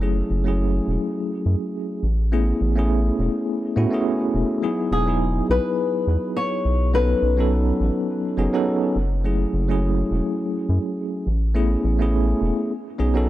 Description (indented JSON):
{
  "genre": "sunset chillout",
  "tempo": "104 BPM",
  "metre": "4/4",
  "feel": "swing 55% on 16ths",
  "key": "unclear",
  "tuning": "A4 = 440 Hz",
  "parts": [
    { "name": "bell-like tine electric piano", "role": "accompaniment", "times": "0.0-13.3 s", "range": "F#3 to A4", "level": "-23 LUFS", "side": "right 1 dB", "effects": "medium stereo tremolo, auto-pan, tape echo" },
    { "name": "round analog bass", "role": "bass", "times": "0.0-13.3 s", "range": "E1 to A2", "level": "-21 LUFS", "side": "equal", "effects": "none" },
    { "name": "flamenco guitar", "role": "melody", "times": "4.9-8.6 s", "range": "G#4 to C#5", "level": "-24 LUFS", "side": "left 4 dB", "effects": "analog delay" }
  ],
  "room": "small room reverb",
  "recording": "dry, gritty hardware recording",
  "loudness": "-19 LUFS",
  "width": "side -14 dB against mid",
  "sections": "0.0-13.3 A section",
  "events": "none",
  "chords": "0.0 F#m7; 2.0 Amaj7; 4.6 Emaj7; 6.9 B7; 9.0 F#m7; 11.3 Amaj7; 12.7 B7",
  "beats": "| 0.02 0.59 1.17 1.75 | 2.32 2.90 3.48 4.05 | 4.63 5.21 5.79 6.36 | 6.94 7.52 8.09 8.67 | 9.25 9.82 10.40 10.98 | 11.55 12.13 12.71 13.29"
}